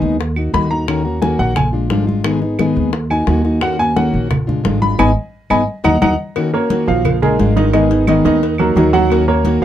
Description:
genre	latin, Cuban son and guajira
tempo	175 BPM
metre	4/4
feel	straight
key	Eb minor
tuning	A4 = 442 Hz
part	fingerpicked plugged-in steel-string acoustic guitar	accompaniment	0.0-9.6 s	Eb3 to Ab4	-17 LUFS	left 2 dB	none
part	upright bass	bass	0.0-9.6 s	Ab1 to Eb2	-18 LUFS	right 1 dB	none
part	bongos and cowbell	percussion	0.0-9.6 s	none	-26 LUFS	left 6 dB	none
part	congas	percussion	0.0-9.6 s	none	-21 LUFS	equal	none
part	claves	percussion	0.4-9.3 s	none	-26 LUFS	right 6 dB	none
part	bright baby grand piano	arpeggios	0.5-9.6 s	Eb3 to Cb6	-16 LUFS	right 2 dB	none
room	light reverb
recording	dark, warm production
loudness	-13 LUFS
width	side -11 dB against mid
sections	0.0-6.4 A section; 6.4-9.6 B section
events	grand piano solo 0.0-6.4; band accent 5.0-6.4; drum fill 5.7-6.4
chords	0.2 Ebm; 0.9 Ebm7; 1.6 Bb7; 2.3 Abm; 2.9 Ebm; 3.6 Ebm7; 4.3 Bb7; 5.0 Abm; 5.7 Ebm; 6.4 Ebm7; 7.1 Bb7; 7.7 Abm; 8.4 Ebm; 9.1 Ebm7

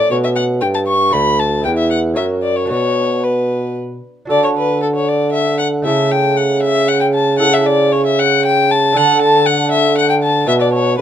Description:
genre	classical, baroque-style sonata movement with continuo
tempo	116 BPM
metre	3/4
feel	straight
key	B minor, D major from 4.3 s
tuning	A4 = 439 Hz
part	rich violin	melody	0.0-11.0 s	A4 to C#6	-16 LUFS	left 4 dB	none
part	lute	accompaniment	0.0-11.0 s	D2 to D5	-21 LUFS	right 4 dB	none
part	dark bassoon	bass	0.1-11.0 s	D2 to D3	-16 LUFS	right 2 dB	none
room	light reverb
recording	dark, warm production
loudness	-12 LUFS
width	side -10 dB against mid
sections	0.0-4.3 A section; 4.3-11.0 A section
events	none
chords	0.0 A; 1.1 D; 1.7 Em; 2.2 F#; 2.7 Bm; 4.3 D; 5.9 A/C#; 9.0 D5; 10.5 Bm

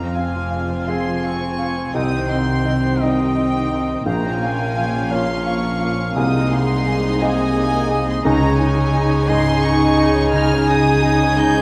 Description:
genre	cinematic, emotional film score for orchestra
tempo	57 BPM (dotted quarters)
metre	6/8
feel	rubato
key	unclear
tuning	A4 = 440 Hz
part	rich studio violin section	melody	0.0-11.6 s	G5 to G6	-30 LUFS	equal	none
part	dark studio violin section	second line	0.0-11.6 s	G3 to F5	-32 LUFS	equal	none
part	warm oboe	second line	0.0-11.6 s	Db5 to Ab5	-28 LUFS	equal	none
part	felt-muted upright piano	accompaniment	0.0-11.6 s	Bb1 to F5	-27 LUFS	equal	none
part	warm studio viola section	accompaniment	0.0-11.6 s	C4 to Ab4	-28 LUFS	equal	none
part	mellow French horn section	sustained chords	0.0-11.6 s	Eb3 to Eb4	-27 LUFS	equal	none
part	concert harp	arpeggios	0.0-11.6 s	Bb2 to Eb5	-29 LUFS	equal	none
part	dark studio cello section	bass	0.0-11.6 s	F2 to Db3	-27 LUFS	equal	none
part	warm studio double bass section	bass	0.0-11.6 s	F1 to Db2	-28 LUFS	equal	none
part	clear clarinet	second line	0.1-11.5 s	Bb3 to Eb4	-30 LUFS	equal	none
part	mellow hollow silver concert flute	second line	0.2-11.5 s	Eb5 to Ab5	-33 LUFS	equal	none
room	wet scoring stage reverb, RT60 1.6 s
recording	dark, warm production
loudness	-18 LUFS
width	mono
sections	0.0-11.6 A section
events	none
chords	0.0 Fm; 1.9 Cm; 4.1 Bbm; 6.2 Abadd9/C; 8.3 Dbsus2

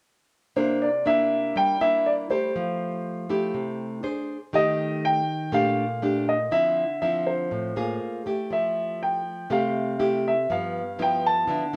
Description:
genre	bossa nova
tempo	121 BPM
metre	4/4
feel	straight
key	F major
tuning	A4 = 440 Hz
part	warm grand piano	melody	0.6-11.8 s	C5 to A5	-26 LUFS	equal	none
part	nylon-string guitar	accompaniment	0.6-11.8 s	G2 to C5	-29 LUFS	equal	none
room	light reverb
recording	band playing live in one room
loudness	-25 LUFS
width	mono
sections	0.6-11.8 A section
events	none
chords	0.6 C9; 2.5 Fmaj9; 4.0 Ab; 4.5 Ebmaj9#11; 6.5 Dm9; 8.0 Am7; 8.5 Fmaj9; 10.5 G13

